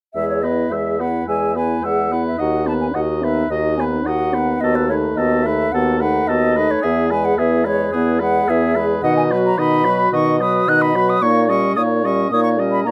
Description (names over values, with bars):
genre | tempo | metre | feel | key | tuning
quick classical-period movement for wind quintet | 109 BPM | 4/4 | rubato | E major, B major from 9.0 s | A4 = 440 Hz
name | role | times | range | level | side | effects
concert flute | melody | 0.1-12.9 s | B4 to F#6 | -23 LUFS | equal | none
warm oboe | second line | 0.2-12.9 s | G#4 to E5 | -27 LUFS | equal | none
warm French horn | accompaniment | 0.2-12.9 s | D#3 to D#4 | -24 LUFS | equal | none
warm clarinet | accompaniment | 0.2-12.9 s | C#4 to G#4 | -27 LUFS | equal | none
mellow bassoon | bass | 0.2-12.9 s | D#2 to B2 | -23 LUFS | equal | none
room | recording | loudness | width
light reverb | close, detailed microphones | -18 LUFS | mono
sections
0.2-12.9 A section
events
none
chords
0.2 E; 2.4 B/D#; 4.6 B7/D#; 6.8 E; 9.0 B; 11.2 D#7/A#